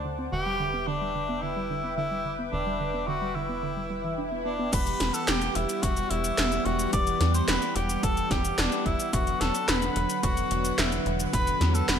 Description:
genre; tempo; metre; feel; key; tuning
synthwave; 109 BPM; 4/4; straight; E minor; A4 = 440 Hz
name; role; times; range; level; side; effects
breathy tenor saxophone; melody; 0.0-12.0 s; D4 to D5; -30 LUFS; left 1 dB; ping-pong delay
soft supersaw; sustained chords; 0.0-12.0 s; D3 to D6; -31 LUFS; equal; wide subtle chorus, sidechain pumping
warbly dusty pluck; arpeggios; 0.0-4.7 s; D3 to D4; -34 LUFS; right 3 dB; chorus, ping-pong delay
tight sequencer bass; bass; 0.0-12.0 s; E1 to E2; -31 LUFS; equal; none
swell; sound effects; 3.9-4.7 s; none; -36 LUFS; left 1 dB; none
80s electronic pad drums; drums; 4.7-12.0 s; crash cymbal, handclaps, hi-hat, shaker, snare drum; -29 LUFS; equal; overdrive
electronic kick drum; drums; 4.7-11.4 s; none; -29 LUFS; equal; overdrive
room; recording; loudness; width
moderate plate reverb, RT60 1.6 s; bright 1980s-style digital production; -24 LUFS; side -8 dB against mid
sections
0.0-4.7 A section; 4.7-12.0 B section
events
swell 3.9-4.7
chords
0.3 Em7; 4.7 Emadd9; 9.1 Bm/E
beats
| 0.33 0.88 1.43 1.98 | 2.53 3.08 3.63 4.18 | 4.73 5.28 5.83 6.38 | 6.93 7.48 8.03 8.58 | 9.13 9.68 10.23 10.78 | 11.33 11.88

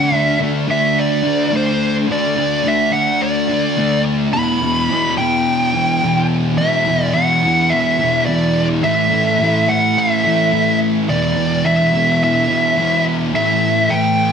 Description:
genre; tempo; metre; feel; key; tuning
rock; 107 BPM; 4/4; straight; E minor; A4 = 439 Hz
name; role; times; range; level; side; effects
fuzz lead guitar; melody; 0.0-14.3 s; C5 to B5; -16 LUFS; equal; distortion, slapback echo
fuzz guitar; riff; 0.0-14.3 s; E2 to D4; -16 LUFS; equal; distortion, lush chorus
room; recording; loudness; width
moderate lush hall reverb, RT60 2.0 s, digital ambience; none; -13 LUFS; side -7 dB against mid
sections
0.0-13.4 A section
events
none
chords
0.0 D5; 4.3 Em; 8.8 A5; 11.1 E5; 13.4 A5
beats
0.41 0.97 1.53 | 2.10 2.65 3.22 3.78 | 4.34 4.90 5.46 6.02 | 6.59 7.15 7.71 8.28 | 8.84 9.40 9.97 10.53 | 11.10 11.66 12.22 12.79 | 13.36 13.92

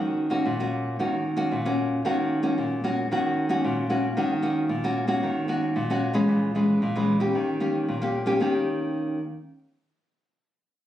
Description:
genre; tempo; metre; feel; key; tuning
samba; 113 BPM; 4/4; straight; Eb minor; A4 = 440 Hz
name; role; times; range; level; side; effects
nylon-string guitar; solo; 0.0-9.2 s; Bb2 to G4; -23 LUFS; equal; slapback echo
room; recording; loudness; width
wet studio ambience, RT60 0.5 s; recorded on a phone in the room, studio reverb; -23 LUFS; side -12 dB against mid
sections
0.0-4.2 A section; 4.2-8.4 B section; 8.4-10.5 C section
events
none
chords
0.0 Ebm7; 6.3 Bbm7b5; 7.3 Eb7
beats
0.46 0.99 1.52 | 2.05 2.58 3.11 3.64 | 4.17 4.70 5.23 5.76 | 6.29 6.82 7.35 7.88 | 8.41 8.94

